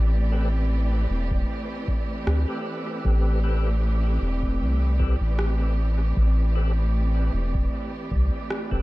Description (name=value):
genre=ambient dub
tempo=77 BPM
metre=4/4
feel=swing 54% on 16ths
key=A minor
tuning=A4 = 440 Hz
part: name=clear studio string section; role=sustained chords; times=0.0-8.8 s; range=E3 to B4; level=-32 LUFS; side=right 1 dB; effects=none
part: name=soft dub sub bass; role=bass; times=0.0-8.8 s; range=E1 to D2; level=-22 LUFS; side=equal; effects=tube saturation
part: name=wind-like tuned noise texture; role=texture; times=0.0-8.8 s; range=D5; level=-39 LUFS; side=right 5 dB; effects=built-in reverb
part: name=percussive tonewheel organ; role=stabs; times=0.3-8.8 s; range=C4 to B4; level=-36 LUFS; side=left 2 dB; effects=overdrive, chorus vibrato, slow rotary speaker, vintage 12-bit sampler grit, dub echo
part: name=electronic kick drum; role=drums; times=1.3-8.8 s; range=none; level=-26 LUFS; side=equal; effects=none
part: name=electronic rim click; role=drums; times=2.3-8.7 s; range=none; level=-34 LUFS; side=equal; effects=overdrive, dub echo
room=little or no reverb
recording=echo-heavy mix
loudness=-21 LUFS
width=side -19 dB against mid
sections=0.0-8.8 A section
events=band accent 8.5-8.8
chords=0.0 Am9